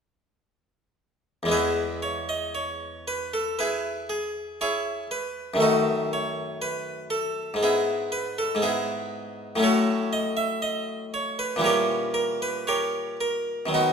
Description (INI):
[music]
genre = classical, baroque-style suite movement for harpsichord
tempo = 59 BPM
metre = 4/4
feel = rubato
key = E major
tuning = A4 = 445 Hz
[part]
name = harpsichord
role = solo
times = 1.4-13.9 s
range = E2 to E5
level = -24 LUFS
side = equal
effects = none
[sound]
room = wet recital hall reverb, RT60 1.6 s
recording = recorded in a church or concert hall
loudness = -24 LUFS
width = side -6 dB against mid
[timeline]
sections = 1.5-13.9 A section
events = none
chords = 1.5 E; 5.6 D#dim/F#; 7.6 E/G#; 9.6 F#m/A; 11.6 A#dim7